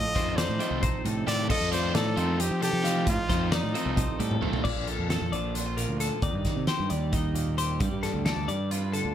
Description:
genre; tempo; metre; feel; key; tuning
math rock and midwest emo; 266 BPM (eighths); 7/8; straight; Bb major; A4 = 438 Hz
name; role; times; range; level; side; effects
bright trumpet; melody; 0.0-4.4 s; Eb4 to Eb5; -30 LUFS; equal; slapback echo
twelve-string electric guitar; accompaniment; 0.0-9.1 s; G2 to D5; -34 LUFS; right 9 dB; none
twelve-string electric guitar; arpeggios; 0.0-9.1 s; G4 to F5; -34 LUFS; left 8 dB; none
fuzz fingered electric bass; bass; 0.0-9.1 s; Bb1 to F3; -30 LUFS; equal; overdrive
crunchy overdriven guitar; riff; 0.2-4.7 s; Eb3 to F4; -33 LUFS; left 2 dB; none
loose indie drum kit; drums; 0.2-9.0 s; crash cymbal, hi-hat, kick drum, snare drum, toms; -30 LUFS; equal; none
room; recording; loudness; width
light reverb; none; -25 LUFS; side -10 dB against mid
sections
0.0-4.6 A section; 4.6-9.1 B section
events
drum fill 4.3-4.6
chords
0.0 F7; 4.6 Bbmaj7; 6.2 Eb6; 7.8 G7

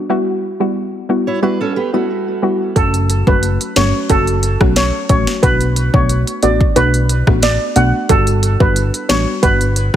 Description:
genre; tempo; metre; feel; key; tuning
dancehall; 90 BPM; 4/4; straight; F# phrygian; A4 = 444 Hz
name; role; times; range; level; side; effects
soft round pluck; accompaniment; 0.0-10.0 s; F#3 to F#4; -18 LUFS; left 1 dB; chorus
fingerpicked steel-string acoustic guitar; arpeggios; 1.3-2.7 s; A3 to C#5; -20 LUFS; right 4 dB; tape echo
steel pan; melody; 2.8-9.9 s; A4 to F#5; -17 LUFS; right 2 dB; tape echo
plucky analog bass; bass; 2.8-10.0 s; F#1 to B1; -16 LUFS; equal; none
afro-pop drum kit; drums; 2.8-10.0 s; hi-hat, kick drum, rim click, snare drum; -16 LUFS; equal; none
room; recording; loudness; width
light reverb, digital ambience; heavily compressed radio sound; -12 LUFS; side -10 dB against mid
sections
0.0-2.8 A section; 2.8-10.0 B section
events
none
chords
0.1 Emadd9; 2.8 F#m; 5.4 Bm7; 8.1 Gmaj7

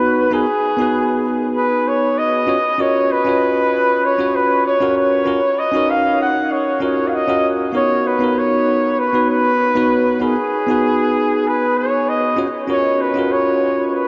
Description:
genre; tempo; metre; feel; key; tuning
chillout; 97 BPM; 4/4; swing 55% on 16ths; G# dorian; A4 = 441 Hz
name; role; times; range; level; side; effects
mellow flugelhorn; melody; 0.0-14.1 s; G#4 to F#5; -19 LUFS; equal; analog delay
bell-like tine electric piano; accompaniment; 0.0-14.1 s; B3 to C#5; -21 LUFS; equal; delay
room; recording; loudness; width
wet huge ambient reverb, RT60 7.9 s; dreamy mix soaked in reverb; -17 LUFS; mono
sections
0.0-14.1 A section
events
none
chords
0.0 G#m7; 2.5 D#m9; 7.7 G#m9; 12.4 F#maj7/C#

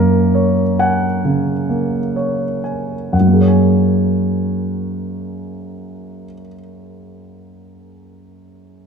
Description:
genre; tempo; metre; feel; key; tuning
classical; 60-71 BPM; 4/4; rubato; F# major; A4 = 442 Hz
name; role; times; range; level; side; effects
warm grand piano; accompaniment; 0.0-8.9 s; F#2 to G#5; -15 LUFS; equal; none
room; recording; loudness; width
wet scoring stage reverb, RT60 1.9 s; dark, warm production; -14 LUFS; side -6 dB against mid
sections
0.0-3.1 A section; 3.1-6.9 B section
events
slowing down 0.0-3.1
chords
0.0 F#add9

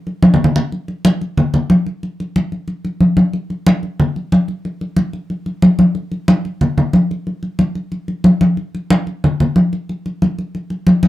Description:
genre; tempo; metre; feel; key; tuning
latin; 183 BPM; 4/4; straight; none; none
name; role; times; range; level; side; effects
congas; percussion; 0.1-11.1 s; none; -13 LUFS; equal; none
room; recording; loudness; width
moderate studio reverb, RT60 0.5 s; dark, warm production; -14 LUFS; side -15 dB against mid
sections
0.7-11.1 A section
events
drum fill 0.2-0.7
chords
none

